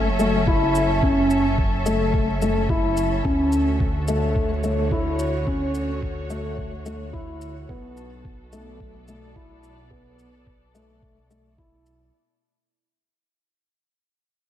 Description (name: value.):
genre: piano and strings electronica.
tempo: 108 BPM.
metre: 4/4.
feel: straight.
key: unclear.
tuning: A4 = 439 Hz.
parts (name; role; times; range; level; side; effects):
rich studio string section; sustained chords; 0.0-12.1 s; B2 to E5; -28 LUFS; equal; sidechain pumping, low-pass filter.
felt-muted upright piano; riff; 0.0-12.0 s; A3 to E4; -24 LUFS; left 1 dB; analog delay.
dark detuned saw bass; bass; 0.0-12.1 s; F#1 to D2; -27 LUFS; equal; sidechain pumping.
shaker; drums; 0.2-12.0 s; none; -42 LUFS; equal; none.
electronic kick drum; drums; 0.5-11.7 s; none; -25 LUFS; equal; none.
room: moderate lush hall reverb, RT60 1.8 s, small room ambience.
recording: dreamy mix soaked in reverb.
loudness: -19 LUFS.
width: side -11 dB against mid.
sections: 0.0-12.1 A section.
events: fade-out 0.0-12.1.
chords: 0.0 F#m7; 3.2 Dmaj7; 7.7 Bm7.